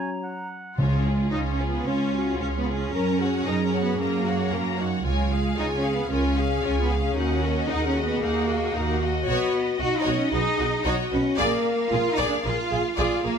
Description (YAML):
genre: cinematic, heroic adventure film score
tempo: 113 BPM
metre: 4/4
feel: straight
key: Db mixolydian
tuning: A4 = 439 Hz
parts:
  - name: clear oboe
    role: second line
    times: 0.0-0.8 s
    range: Gb5 to Ab5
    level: -37 LUFS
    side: right 3 dB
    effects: none
  - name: dark clarinet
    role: second line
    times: 0.0-0.5 s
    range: Db4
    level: -37 LUFS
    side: left 6 dB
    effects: none
  - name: silver concert flute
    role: second line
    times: 0.0-0.5 s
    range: Bb5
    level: -36 LUFS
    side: right 1 dB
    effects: none
  - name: warm French horn section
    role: sustained chords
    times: 0.0-13.4 s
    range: Gb3 to Bb4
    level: -29 LUFS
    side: left 4 dB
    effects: none
  - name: rich symphonic violin section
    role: melody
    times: 0.8-13.4 s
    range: Ab4 to Bb5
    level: -33 LUFS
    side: left 4 dB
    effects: none
  - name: clear symphonic violin section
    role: second line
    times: 0.8-13.3 s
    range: Db4 to F5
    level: -32 LUFS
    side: left 4 dB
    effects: none
  - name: clear symphonic viola section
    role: accompaniment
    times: 0.8-13.3 s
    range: Db4 to Ab4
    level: -32 LUFS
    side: right 1 dB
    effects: none
  - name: rich symphonic cello section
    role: bass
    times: 0.8-13.4 s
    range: Ab3 to Gb4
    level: -27 LUFS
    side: right 1 dB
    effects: none
  - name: rich symphonic double bass section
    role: bass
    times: 0.8-13.3 s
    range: Bb1 to Gb2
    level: -27 LUFS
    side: right 4 dB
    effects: none
  - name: timpani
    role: percussion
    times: 0.8-1.6 s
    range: Db3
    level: -26 LUFS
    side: left 2 dB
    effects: none
room: moderate scoring stage reverb, RT60 1.5 s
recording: none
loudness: -22 LUFS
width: side -7 dB against mid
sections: 0.8-13.4 A section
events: none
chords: 0.0 Gb; 0.8 Db; 2.9 Gb; 5.1 Db; 7.2 Ebm; 9.3 Cbadd9; 11.4 Bb7